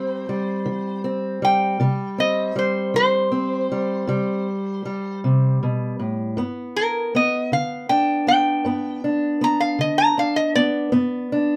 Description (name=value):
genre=acoustic country blues, solo or duo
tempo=53 BPM (dotted quarters)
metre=12/8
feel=straight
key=C major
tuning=A4 = 440 Hz
part: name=metal-body resonator slide guitar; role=melody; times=0.0-10.9 s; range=Bb4 to Bb5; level=-22 LUFS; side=equal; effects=none
part: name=fingerpicked steel-string acoustic guitar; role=accompaniment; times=0.0-11.6 s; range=G2 to D4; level=-24 LUFS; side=equal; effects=none
room=moderate small room reverb, RT60 0.5 s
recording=none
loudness=-21 LUFS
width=mono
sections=0.0-11.6 A section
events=resonator guitar played with a steel bar solo 0.0-11.6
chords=0.0 C; 6.4 G